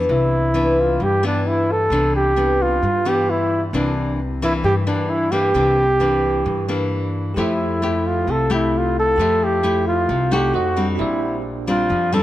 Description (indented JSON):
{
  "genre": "bossa nova",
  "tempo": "132 BPM",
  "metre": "4/4",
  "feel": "straight",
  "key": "C major",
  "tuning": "A4 = 440 Hz",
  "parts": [
    { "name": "nylon-string guitar", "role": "accompaniment", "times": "0.0-12.2 s", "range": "G2 to G4", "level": "-22 LUFS", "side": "left 3 dB", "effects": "none" },
    { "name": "upright bass", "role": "bass", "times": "0.0-12.2 s", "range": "Bb1 to G2", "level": "-24 LUFS", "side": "equal", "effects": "none" },
    { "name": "warm flugelhorn", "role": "melody", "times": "0.1-12.2 s", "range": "D4 to A4", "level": "-19 LUFS", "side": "right 1 dB", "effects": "none" },
    { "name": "barky tine electric piano", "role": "accompaniment", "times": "7.3-12.2 s", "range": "D4 to E5", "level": "-29 LUFS", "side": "right 5 dB", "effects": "medium stereo tremolo" }
  ],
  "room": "light reverb",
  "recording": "none",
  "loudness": "-16 LUFS",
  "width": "side -14 dB against mid",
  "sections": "0.0-12.2 A section",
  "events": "none",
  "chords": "0.1 Cmaj9; 3.7 C9; 7.4 Fmaj9; 10.5 F7b9; 11.0 Bb69"
}